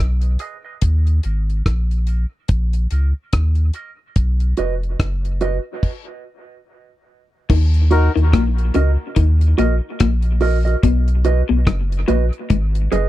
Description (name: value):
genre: dub reggae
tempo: 72 BPM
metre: 4/4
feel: swing 58% on 16ths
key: Eb minor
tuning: A4 = 440 Hz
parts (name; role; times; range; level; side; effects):
- soft dub sub bass; bass; 0.0-13.1 s; F1 to Eb2; -16 LUFS; equal; none
- deep reggae drum kit; drums; 0.2-13.1 s; crash cymbal, hi-hat, kick drum, rim click; -19 LUFS; equal; none
- mellow electric guitar; accompaniment; 0.4-13.1 s; Gb4 to Eb5; -24 LUFS; right 8 dB; high-pass filter, low-pass filter, dub echo
- electric guitar through a small old amp; riff; 7.5-13.1 s; F#2 to Eb3; -22 LUFS; left 9 dB; wide subtle chorus, dub echo
- percussive organ stab; stabs; 7.9-8.1 s; Eb4 to Bb4; -25 LUFS; left 5 dB; chorus, high-pass filter, low-pass filter, dub echo
room: little or no reverb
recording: dry, close 1970s-style studio recording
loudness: -16 LUFS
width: side -15 dB against mid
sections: 0.0-7.5 A section; 7.5-13.1 B section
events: break 0.0-7.5; filter sweep 0.0-7.5, 10.8-13.1; stop 5.8-7.5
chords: 0.0 Abm; 0.8 Ebm; 4.2 B; 5.8 N.C.; 7.5 Ebm; 10.8 B; 12.5 Abm